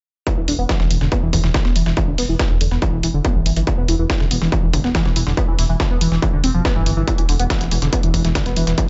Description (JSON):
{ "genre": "driving peak-time techno", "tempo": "141 BPM", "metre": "4/4", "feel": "straight", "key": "E phrygian", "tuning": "A4 = 438 Hz", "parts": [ { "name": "overdriven synth lead", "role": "riff", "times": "0.3-8.8 s", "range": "D3 to C4", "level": "-24 LUFS", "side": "equal", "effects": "analog chorus, sidechain pumping, dub echo" }, { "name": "dusty soul sampler-style drum kit", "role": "drums", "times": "0.3-8.9 s", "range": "hi-hat, snare drum", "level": "-32 LUFS", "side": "equal", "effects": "sidechain pumping on hats, high-pass filter on hats, high-pass filter on snare" }, { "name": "electronic kick drum", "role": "drums", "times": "0.3-8.9 s", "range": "none", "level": "-22 LUFS", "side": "equal", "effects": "distortion" }, { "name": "dark detuned saw bass", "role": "bass", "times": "0.4-8.7 s", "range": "E1 to G1", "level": "-23 LUFS", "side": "equal", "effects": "tube saturation, sidechain pumping" }, { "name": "electronic hi-hat", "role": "drums", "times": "0.5-8.9 s", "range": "none", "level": "-28 LUFS", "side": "equal", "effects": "none" } ], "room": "digital ambience", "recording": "nothing above 7.8 kHz", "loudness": "-18 LUFS", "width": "mono", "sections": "0.3-8.9 A section", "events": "none", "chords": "none" }